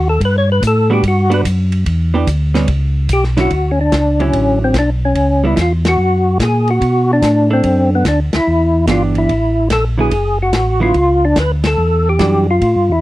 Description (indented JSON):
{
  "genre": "soul jazz organ trio",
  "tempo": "145 BPM",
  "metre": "4/4",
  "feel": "swing 67% on 8ths",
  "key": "D major",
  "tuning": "A4 = 440 Hz",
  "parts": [
    { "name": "percussive tonewheel organ", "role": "melody", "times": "0.0-13.0 s", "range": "B3 to C#5", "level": "-14 LUFS", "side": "left 1 dB", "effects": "chorus vibrato, slow rotary speaker" },
    { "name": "mellow tonewheel organ", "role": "bass", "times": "0.0-13.0 s", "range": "F#1 to B2", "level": "-15 LUFS", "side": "equal", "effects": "overdrive, chorus vibrato, slow rotary speaker" },
    { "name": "warm soul drum kit", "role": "drums", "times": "0.2-12.7 s", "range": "hi-hat, kick drum, ride cymbal, snare drum", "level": "-22 LUFS", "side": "equal", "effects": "none" },
    { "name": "vintage hollow-body jazz guitar", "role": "accompaniment", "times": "0.9-12.5 s", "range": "D3 to A4", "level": "-17 LUFS", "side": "right 3 dB", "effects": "none" }
  ],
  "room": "small room ambience",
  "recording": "none",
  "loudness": "-11 LUFS",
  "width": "side -16 dB against mid",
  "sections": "0.0-3.5 A section; 3.5-13.0 B section",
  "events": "tonewheel organ solo 0.0-3.5; band accent 5.8, 8.3, 11.6",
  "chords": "0.2 Gmaj7; 1.9 Em7; 2.7 Bmadd9; 3.5 Dmaj9; 5.2 C#m7b5; 6.0 F#add9; 6.8 Bm7; 8.5 Em7; 9.3 A5; 10.1 D; 11.8 Em9"
}